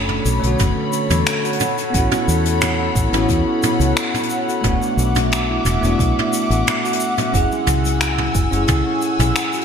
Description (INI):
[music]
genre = sunset chillout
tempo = 89 BPM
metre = 4/4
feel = straight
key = unclear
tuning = A4 = 439 Hz
[part]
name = bell-like tine electric piano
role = accompaniment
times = 0.0-9.6 s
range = D3 to C#5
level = -23 LUFS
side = equal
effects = auto-pan, digital delay
[part]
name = airy breathy pad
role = sustained chords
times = 0.0-9.6 s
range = A4 to E6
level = -23 LUFS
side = left 2 dB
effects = chorus
[part]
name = concert harp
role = arpeggios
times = 0.0-9.6 s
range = G#3 to F#4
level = -25 LUFS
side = right 1 dB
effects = digital delay
[part]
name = fingered electric bass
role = bass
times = 0.0-9.3 s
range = E1 to E2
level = -20 LUFS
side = equal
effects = none
[part]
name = jazz brush drum kit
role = drums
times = 0.1-9.6 s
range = finger snaps, hi-hat, shaker, toms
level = -22 LUFS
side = equal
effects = gated reverb
[part]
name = electronic kick drum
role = drums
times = 0.6-8.8 s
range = none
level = -21 LUFS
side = equal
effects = none
[sound]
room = moderate plate reverb, RT60 1.9 s, small room reverb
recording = bright 1980s-style digital production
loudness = -15 LUFS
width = side -7 dB against mid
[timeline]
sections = 0.0-9.6 A section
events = none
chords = 0.0 Bm9; 1.6 A69; 4.6 E9sus4; 7.3 F#m9